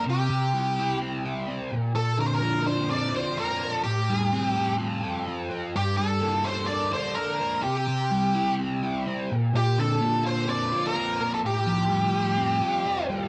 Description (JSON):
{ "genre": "rock", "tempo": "126 BPM", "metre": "4/4", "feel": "straight", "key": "unclear", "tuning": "A4 = 440 Hz", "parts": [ { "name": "octave-fuzz lead guitar", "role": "melody", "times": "0.0-13.1 s", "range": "G4 to D5", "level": "-30 LUFS", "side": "equal", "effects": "wah, distortion, analog delay" }, { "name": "crunchy overdriven guitar", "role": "riff", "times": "0.0-13.3 s", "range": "G2 to A4", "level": "-29 LUFS", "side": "equal", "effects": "flanger" } ], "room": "light reverb", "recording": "none", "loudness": "-26 LUFS", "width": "mono", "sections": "0.0-13.3 A section", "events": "none", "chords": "0.0 C; 1.7 Bbadd9; 3.8 Fadd9/A; 5.7 Gmadd9; 7.6 C; 9.3 Bbadd9; 11.4 Fadd9/A" }